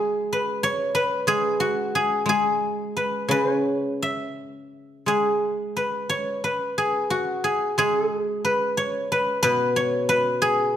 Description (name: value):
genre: chinese traditional, Chinese solo plucked strings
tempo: 84-98 BPM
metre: 4/4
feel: rubato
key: unclear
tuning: A4 = 439 Hz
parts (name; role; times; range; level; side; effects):
- guzheng; solo; 0.0-10.8 s; B2 to E5; -21 LUFS; equal; none
room: moderate recital hall reverb, RT60 1.5 s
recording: none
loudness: -21 LUFS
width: side -10 dB against mid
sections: 0.0-10.8 A section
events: none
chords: none